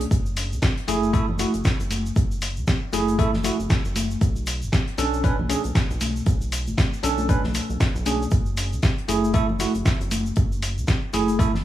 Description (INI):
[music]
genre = deep house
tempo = 117 BPM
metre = 4/4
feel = swing 58% on 16ths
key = F# minor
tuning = A4 = 440 Hz
[part]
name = bell-like tine electric piano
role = stabs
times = 0.0-11.5 s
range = A3 to B4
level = -25 LUFS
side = right 1 dB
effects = medium stereo tremolo, sidechain pumping, digital delay
[part]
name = rubbery square bass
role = bass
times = 0.0-11.6 s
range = F#1 to C#2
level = -28 LUFS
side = equal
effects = sidechain pumping
[part]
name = modern studio drum kit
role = drums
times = 0.0-11.6 s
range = hi-hat, snare drum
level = -38 LUFS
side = left 3 dB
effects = sidechain pumping on hats, high-pass filter on hats, small room ambience, high-pass filter on snare, high-pass filter on room
[part]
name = electronic kick drum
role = drums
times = 0.1-11.5 s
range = none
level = -21 LUFS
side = equal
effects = small room ambience
[part]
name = egg shaker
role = percussion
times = 0.1-11.5 s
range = none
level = -38 LUFS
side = right 2 dB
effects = none
[part]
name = dusty soul sampler-style drum kit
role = drums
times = 0.4-11.3 s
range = hi-hat, snare drum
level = -27 LUFS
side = equal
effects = small room ambience
[part]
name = congas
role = percussion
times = 1.3-11.6 s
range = none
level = -32 LUFS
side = left 2 dB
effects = none
[sound]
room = small room ambience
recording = vinyl crackle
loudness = -20 LUFS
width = side -13 dB against mid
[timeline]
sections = 0.0-11.6 A section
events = none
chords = 0.1 F#m7; 4.2 Bmadd9; 8.3 F#m9